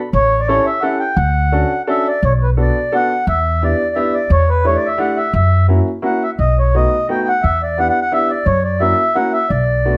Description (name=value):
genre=musette waltz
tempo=173 BPM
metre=3/4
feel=rubato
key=B minor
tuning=A4 = 440 Hz
part: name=mellow accordion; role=melody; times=0.1-10.0 s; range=B4 to G5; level=-19 LUFS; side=equal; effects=slapback echo
part: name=upright bass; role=bass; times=0.1-10.0 s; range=A1 to F#2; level=-18 LUFS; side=equal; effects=none
part: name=clear upright piano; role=accompaniment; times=0.5-10.0 s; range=A3 to A4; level=-22 LUFS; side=equal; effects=none
room=moderate studio reverb, RT60 0.6 s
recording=none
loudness=-16 LUFS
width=mono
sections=0.0-2.2 A section; 2.2-10.0 B section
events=none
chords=0.1 A7; 1.2 Dmaj7; 2.2 Bm7; 3.3 Em7; 4.3 A7sus4/E; 5.3 F#7; 6.4 B7; 7.4 Em7; 8.5 F#7